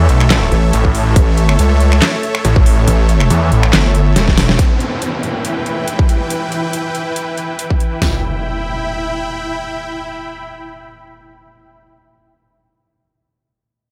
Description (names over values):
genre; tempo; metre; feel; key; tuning
heavy wobble dubstep; 140 BPM; 4/4; swing 54% on 16ths, half-time; E dorian; A4 = 440 Hz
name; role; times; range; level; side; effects
supersaw pad; sustained chords; 0.0-11.8 s; E3 to B5; -23 LUFS; equal; sidechain pumping
snarling distorted saw bass; bass; 0.0-3.7 s; A1 to E2; -14 LUFS; equal; distortion, overdrive
dubstep drum kit; drums; 0.1-7.9 s; finger snaps, handclaps, hi-hat, snare drum; -19 LUFS; equal; overdrive
wobble bass; bass; 0.5-4.6 s; E1 to C#2; -14 LUFS; equal; chorus, overdrive
dubstep drum kit; drums; 0.8-8.1 s; hi-hat, kick drum, snare drum, toms; -16 LUFS; equal; overdrive
downlifter and impact; sound effects; 4.6-11.8 s; none; -27 LUFS; equal; none
room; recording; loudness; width
light reverb; none; -14 LUFS; mono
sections
0.0-4.6 A section; 4.6-8.0 B section; 8.0-11.4 C section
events
drop 0.0-4.6; drum fill 4.2-4.6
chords
0.0 A; 4.6 Em